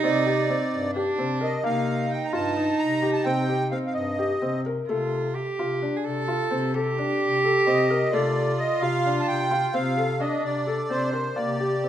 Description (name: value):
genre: contemporary instrumental, chamber music in an uneven meter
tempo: 260 BPM (eighths)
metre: 7/8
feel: straight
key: C dorian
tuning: A4 = 440 Hz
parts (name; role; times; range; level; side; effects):
- accordion; melody; 0.0-4.6, 7.7-11.9 s; C5 to Bb5; -27 LUFS; right 2 dB; light tremolo tuning
- rich cello; second line; 0.0-11.9 s; D4 to A4; -26 LUFS; right 3 dB; none
- felt-muted upright piano; arpeggios; 0.0-11.9 s; A3 to Bb4; -27 LUFS; left 2 dB; none
- mellow bass clarinet; bass; 0.0-11.9 s; G2 to C3; -31 LUFS; left 2 dB; none
room: moderate recital hall reverb, RT60 1.6 s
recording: minimal, uncompressed stereo recording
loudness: -22 LUFS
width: side -10 dB against mid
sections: 0.0-11.4 A section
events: none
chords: 0.0 Cm9; 4.9 F6/C; 11.4 C7(no3)